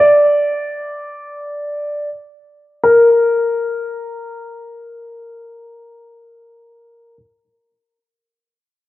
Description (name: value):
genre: R&B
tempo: free time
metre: none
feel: none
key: unclear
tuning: A4 = 440 Hz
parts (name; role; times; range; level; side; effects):
- warm grand piano; melody; 0.0-7.1 s; Bb4 to D5; -14 LUFS; left 1 dB; tape echo
room: moderate booth ambience, RT60 0.1 s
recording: home recording on cassette, low-pass filter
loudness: -14 LUFS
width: side -16 dB against mid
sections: 0.0-2.8 A section; 2.8-5.7 B section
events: filter sweep 0.0-2.8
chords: none